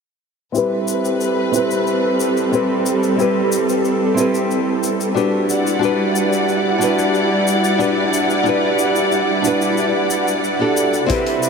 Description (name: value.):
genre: sunset chillout.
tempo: 91 BPM.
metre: 4/4.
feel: straight.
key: A minor.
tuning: A4 = 439 Hz.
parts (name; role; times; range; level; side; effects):
nylon-string guitar; accompaniment; 0.5-11.5 s; C4 to B4; -18 LUFS; moving between left 4 dB and right 3 dB; auto-pan, vintage 12-bit sampler grit, low-pass filter, diffuse ambient delay.
dark studio string section; sustained chords; 0.5-11.5 s; C3 to F#5; -18 LUFS; right 1 dB; none.
electronic shaker and hi-hat; drums; 0.6-11.5 s; none; -30 LUFS; left 5 dB; none.
electronic kick drum; drums; 11.1-11.2 s; none; -24 LUFS; equal; none.
room: wet huge ambient reverb, RT60 7.7 s.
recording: dreamy mix soaked in reverb.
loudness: -15 LUFS.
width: side -5 dB against mid.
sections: 0.5-11.1 A section.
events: filter sweep on nylon-string guitar 0.5-11.1.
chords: 0.5 Am9; 5.5 Em9.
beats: | 0.55 1.21 1.86 2.52 | 3.18 3.84 4.50 5.16 | 5.82 6.48 7.14 7.80 | 8.46 9.12 9.78 10.44 | 11.10.